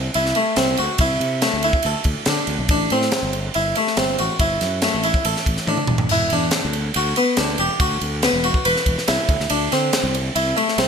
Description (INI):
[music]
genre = math rock and midwest emo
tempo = 141 BPM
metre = 4/4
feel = straight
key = unclear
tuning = A4 = 440 Hz
[part]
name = fuzz fingered electric bass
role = bass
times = 0.0-10.9 s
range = E1 to D3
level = -25 LUFS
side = equal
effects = overdrive
[part]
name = crisp fusion drum kit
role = drums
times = 0.1-10.9 s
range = crash cymbal, kick drum, ride cymbal, snare drum, toms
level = -22 LUFS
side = equal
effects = gated reverb
[part]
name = harpsichord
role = arpeggios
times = 0.2-10.9 s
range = A3 to B4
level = -20 LUFS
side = equal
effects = none
[sound]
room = moderate plate reverb, RT60 1.9 s, studio reverb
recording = bright 1980s-style digital production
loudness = -17 LUFS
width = side -6 dB against mid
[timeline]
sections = 0.0-10.9 A section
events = drum fill 5.7-6.1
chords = 0.0 D7sus2; 2.7 Am7; 5.9 E7sus2; 9.3 D7sus2